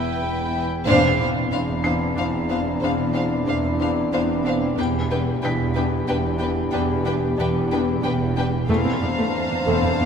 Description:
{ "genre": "cinematic, suspense film score", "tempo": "92 BPM", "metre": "3/4", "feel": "straight", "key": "unclear", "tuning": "A4 = 440 Hz", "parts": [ { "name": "warm chamber violin section", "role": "melody", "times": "0.0-10.1 s", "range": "F5 to G5", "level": "-29 LUFS", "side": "left 1 dB", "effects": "none" }, { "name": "warm chamber violin section", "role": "second line", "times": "0.0-10.1 s", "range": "B4 to C5", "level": "-29 LUFS", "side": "left 2 dB", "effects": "none" }, { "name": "warm chamber viola section", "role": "accompaniment", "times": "0.0-10.1 s", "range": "A3 to E4", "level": "-29 LUFS", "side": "right 1 dB", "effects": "none" }, { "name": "Celtic harp", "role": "riff", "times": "0.0-10.1 s", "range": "E2 to E3", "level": "-27 LUFS", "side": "left 6 dB", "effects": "none" }, { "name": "dark chamber cello section", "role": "bass", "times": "0.0-10.1 s", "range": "E2", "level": "-28 LUFS", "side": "right 2 dB", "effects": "none" }, { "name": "warm chamber double bass section", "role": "bass", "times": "0.0-10.1 s", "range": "E1", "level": "-27 LUFS", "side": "right 4 dB", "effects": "none" }, { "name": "organ-like drone", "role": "drone", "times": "0.0-10.1 s", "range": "E2", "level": "-31 LUFS", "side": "equal", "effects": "ensemble chorus, built-in reverb" }, { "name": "felt-muted upright piano", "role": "texture", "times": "0.0-8.7 s", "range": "B5 to C7", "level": "-36 LUFS", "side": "right 1 dB", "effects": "none" }, { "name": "warm French horn section", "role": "sustained chords", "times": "0.9-10.1 s", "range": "C4 to G4", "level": "-27 LUFS", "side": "left 1 dB", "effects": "none" }, { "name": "warm chamber violin section", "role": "texture", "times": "0.9-4.4, 8.7-10.1 s", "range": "A5 to A#5", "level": "-37 LUFS", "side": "left 2 dB", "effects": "none" } ], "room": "wet church reverb, RT60 3.2 s", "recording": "recorded in a church or concert hall", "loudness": "-19 LUFS", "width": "side -7 dB against mid", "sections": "0.9-10.1 A section", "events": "band accent 0.9-1.5", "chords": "0.0 Em; 0.9 Dm7/E; 4.8 Em7; 8.7 Dm7/E", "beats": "0.21 | 0.86 1.51 2.17 | 2.82 3.47 4.12 | 4.77 5.43 6.08 | 6.73 7.38 8.03 | 8.69 9.34 9.99" }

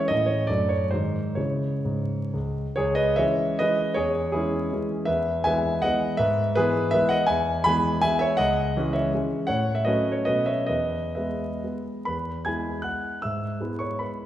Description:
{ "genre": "classical, romantic triple-time dance for piano with dotted rhythms", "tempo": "118-173 BPM", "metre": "3/4", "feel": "rubato", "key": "C# minor, E major from 7.3 s", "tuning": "A4 = 440 Hz", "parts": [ { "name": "warm concert grand piano", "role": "solo", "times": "0.0-14.3 s", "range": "C#2 to G#6", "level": "-22 LUFS", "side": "equal", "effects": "none" } ], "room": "wet recital hall reverb, RT60 1.5 s", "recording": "heard from further back in the room, vinyl crackle", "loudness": "-22 LUFS", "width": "side -12 dB against mid", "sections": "0.0-2.8 A section; 2.8-12.1 B section; 12.1-14.3 C section", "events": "none", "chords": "0.1 A; 0.5 D/F#; 0.9 G#; 1.4 C#m; 4.0 C#m/E; 5.1 E; 6.2 E/G#; 7.3 E; 8.4 C#m; 9.5 F#m/A; 10.3 B9; 10.7 E; 13.2 E/G#", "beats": "| 0.11 0.50 0.93 | 1.39 1.88 2.35 | 2.79 3.20 3.60 | 3.97 4.34 4.72 | 5.08 5.46 5.84 | 6.20 6.57 6.94 | 7.29 7.67 8.04 | 8.40 8.77 9.15 | 9.51 9.88 10.28 | 10.70 11.17 11.62 | 12.06 12.46 12.86 | 13.23 13.62 14.01" }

